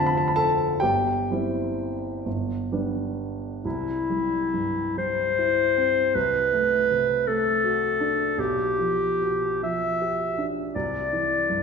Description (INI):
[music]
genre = classical, romantic duo for clarinet and grand piano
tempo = 40-55 BPM (dotted quarters)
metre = 6/8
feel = rubato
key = C major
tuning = A4 = 440 Hz
[part]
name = dark grand piano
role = accompaniment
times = 0.0-11.6 s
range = F1 to B5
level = -26 LUFS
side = right 1 dB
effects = none
[part]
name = warm clarinet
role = melody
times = 3.6-11.6 s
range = E4 to E5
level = -22 LUFS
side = left 1 dB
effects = none
[sound]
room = wet recital hall reverb, RT60 1.4 s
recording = recorded in a church or concert hall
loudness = -22 LUFS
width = side -5 dB against mid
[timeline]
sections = 0.0-3.6 A section; 3.6-11.6 B section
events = none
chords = 0.0 Dm7/F; 0.8 C/G; 2.3 G; 3.6 C; 6.2 D7/C; 8.4 G7/B; 10.7 C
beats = | 0.81 2.26 | 3.65 4.98 | 6.15 7.28 | 8.38 9.62 | 10.74